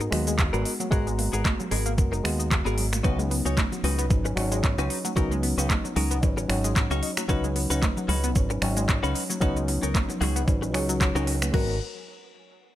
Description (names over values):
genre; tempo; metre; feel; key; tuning
nu-disco, nu disco; 113 BPM; 4/4; swing 56% on 16ths; unclear; A4 = 440 Hz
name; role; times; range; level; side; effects
reed electric piano; accompaniment; 0.0-11.7 s; F#3 to A#5; -30 LUFS; left 1 dB; overdrive, ping-pong delay
analog pluck; arpeggios; 0.0-11.8 s; F#3 to G#4; -34 LUFS; left 2 dB; chorus, phaser, sidechain pumping, dub echo
direct-recorded clean electric guitar; riff; 0.0-11.8 s; B3 to C#5; -32 LUFS; left 3 dB; wide subtle chorus, ping-pong delay
fingered electric bass with an envelope filter; bass; 0.0-11.8 s; F#1 to D#2; -27 LUFS; equal; tube saturation
pop drum kit; drums; 0.0-11.7 s; crash cymbal, finger snaps, handclaps, hi-hat, shaker; -30 LUFS; equal; studio reverb
cabasa and congas; percussion; 0.1-11.5 s; none; -37 LUFS; right 4 dB; none
electronic kick drum; drums; 0.4-11.7 s; none; -24 LUFS; equal; overdrive, studio reverb
room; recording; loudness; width
little or no reverb; none; -22 LUFS; side -13 dB against mid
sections
0.0-11.5 A section; 11.5-12.8 B section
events
drop 0.0-11.5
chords
0.0 G#m9; 3.0 C#9sus4; 11.5 G#m9